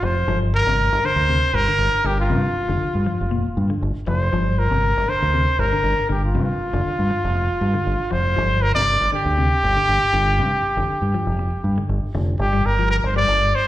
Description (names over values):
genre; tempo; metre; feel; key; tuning
afrobeat; 119 BPM; 4/4; straight; G minor; A4 = 443 Hz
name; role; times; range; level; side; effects
breathy trumpet; melody; 0.0-13.7 s; F4 to D5; -20 LUFS; equal; plate reverb, slapback echo
semi-hollow electric guitar; arpeggios; 0.0-13.3 s; Bb2 to G3; -27 LUFS; left 3 dB; slapback echo, plate reverb
deep dub fingered electric bass; bass; 0.0-13.5 s; F1 to G2; -21 LUFS; equal; none
room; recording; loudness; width
light reverb; live gig heard through the venue's PA, recital hall reverb; -17 LUFS; side -14 dB against mid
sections
0.0-12.4 A section; 12.4-13.7 B section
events
none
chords
0.0 G7(no3); 12.4 Gm7